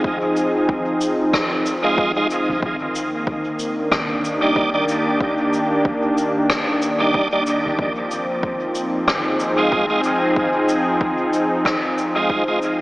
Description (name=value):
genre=ambient dub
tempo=93 BPM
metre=4/4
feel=swing 57% on 16ths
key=F dorian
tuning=A4 = 440 Hz
part: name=warm analog pad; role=sustained chords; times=0.0-12.8 s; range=Eb3 to Ab4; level=-20 LUFS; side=equal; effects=wide subtle chorus
part: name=electronic kick drum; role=drums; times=0.0-12.4 s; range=none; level=-26 LUFS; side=equal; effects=overdrive, studio reverb
part: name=soft-mallet drum kit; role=drums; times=0.4-12.8 s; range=cabasa, rim click, toms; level=-25 LUFS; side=equal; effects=studio reverb, dub echo
part: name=overdriven tonewheel organ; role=stabs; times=1.8-12.6 s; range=G3 to Eb5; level=-23 LUFS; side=right 1 dB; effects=chorus vibrato, stopped rotary speaker, dub echo
room=moderate huge ambient reverb, RT60 7.7 s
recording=AM radio sound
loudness=-17 LUFS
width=side -19 dB against mid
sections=0.0-12.8 A section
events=fade-out 11.2-12.8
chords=0.0 Fm7; 2.6 Ebmaj7; 7.8 Fm7